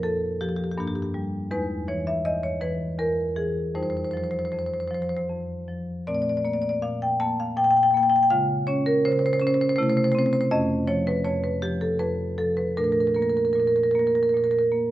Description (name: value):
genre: classical, contemporary piece for solo marimba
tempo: 80 BPM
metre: 3/4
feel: straight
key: unclear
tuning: A4 = 440 Hz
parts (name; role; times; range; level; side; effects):
- marimba with medium hard mallets; solo; 0.0-14.9 s; E2 to A5; -22 LUFS; equal; none
room: moderate recital hall reverb, RT60 1.7 s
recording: close, detailed microphones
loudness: -22 LUFS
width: side -13 dB against mid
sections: 0.0-14.9 A section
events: none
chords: 0.0 F7sus4; 0.8 Gm; 1.5 Emaj7; 3.8 Fsus2; 6.1 Bbmaj9; 8.3 Dbmaj7; 9.8 C6; 10.5 Faug; 12.8 Bbmaj7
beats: 0.05 0.78 | 1.52 2.25 3.00 | 3.75 4.52 5.29 | 6.06 6.82 7.56 | 8.30 9.04 9.77 | 10.51 11.24 11.99 | 12.76 13.55 14.33